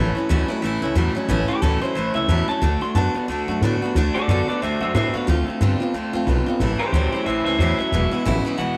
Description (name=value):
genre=rock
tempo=181 BPM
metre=4/4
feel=swing 58% on 8ths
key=A major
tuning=A4 = 439 Hz
part: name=picked steel-string acoustic guitar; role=accompaniment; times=0.0-8.8 s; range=E2 to F#4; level=-27 LUFS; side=equal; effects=none
part: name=electric guitar through a small old amp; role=riff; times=0.0-8.8 s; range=E2 to B3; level=-28 LUFS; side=equal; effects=none
part: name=upright bass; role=bass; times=0.0-8.7 s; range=E1 to A2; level=-24 LUFS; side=equal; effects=none
part: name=electric guitar through a small old amp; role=melody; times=1.5-8.8 s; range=G4 to C6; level=-27 LUFS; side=equal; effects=tape echo
room=light reverb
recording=none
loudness=-21 LUFS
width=mono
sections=0.0-8.8 A section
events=clean electric guitar solo 0.0-8.8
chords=0.0 A; 2.6 D; 5.3 Dm7; 6.6 A; 7.9 E